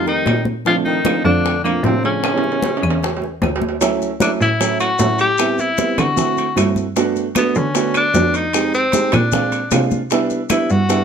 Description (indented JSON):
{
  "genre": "Afro-Cuban jazz",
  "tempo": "152 BPM",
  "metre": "4/4",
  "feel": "straight",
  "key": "D major from 3.8 s",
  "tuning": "A4 = 440 Hz",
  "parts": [
    { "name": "bright tenor saxophone", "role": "melody", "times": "0.0-11.0 s", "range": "Bb3 to G4", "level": "-19 LUFS", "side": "left 2 dB", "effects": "none" },
    { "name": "breathy baritone saxophone", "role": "second line", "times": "0.0-3.4 s", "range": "Bb2 to F3", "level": "-25 LUFS", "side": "left 8 dB", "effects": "none" },
    { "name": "dark upright piano", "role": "accompaniment", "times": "0.0-11.0 s", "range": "E3 to G4", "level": "-20 LUFS", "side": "right 5 dB", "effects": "none" },
    { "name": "clear cello", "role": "bass", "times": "0.0-11.0 s", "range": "D2 to D3", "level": "-21 LUFS", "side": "equal", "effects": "none" },
    { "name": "bongos", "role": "percussion", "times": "0.1-11.0 s", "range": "none", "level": "-27 LUFS", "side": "left 8 dB", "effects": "none" },
    { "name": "congas", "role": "percussion", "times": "0.1-11.0 s", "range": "none", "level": "-24 LUFS", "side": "left 3 dB", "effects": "none" },
    { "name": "timbales", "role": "percussion", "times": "0.1-11.0 s", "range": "none", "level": "-26 LUFS", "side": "right 7 dB", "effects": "none" },
    { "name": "claves", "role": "percussion", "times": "0.3-10.7 s", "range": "none", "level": "-29 LUFS", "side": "left 8 dB", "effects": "none" },
    { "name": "maracas", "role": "percussion", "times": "3.8-11.0 s", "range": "none", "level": "-29 LUFS", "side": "left 10 dB", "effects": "none" }
  ],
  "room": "moderate studio reverb, RT60 0.7 s",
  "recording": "none",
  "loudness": "-15 LUFS",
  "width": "side -7 dB against mid",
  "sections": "0.0-3.8 A section; 3.8-11.0 B section",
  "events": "drum fill 2.2-3.8",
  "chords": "0.0 F9; 0.7 Bbmaj9; 2.2 A7; 3.8 Dmaj7; 5.4 Am7; 6.2 D7; 7.0 Gmaj7; 8.5 Fm7; 9.3 Bb9; 10.1 Cmaj9",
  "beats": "0.26 | 0.66 1.05 1.45 1.84 | 2.24 2.63 3.03 3.42 | 3.81 4.21 4.60 5.00 | 5.39 5.78 6.18 6.57 | 6.96 7.36 7.75 8.14 | 8.54 8.93 9.32 9.72 | 10.11 10.50 10.90"
}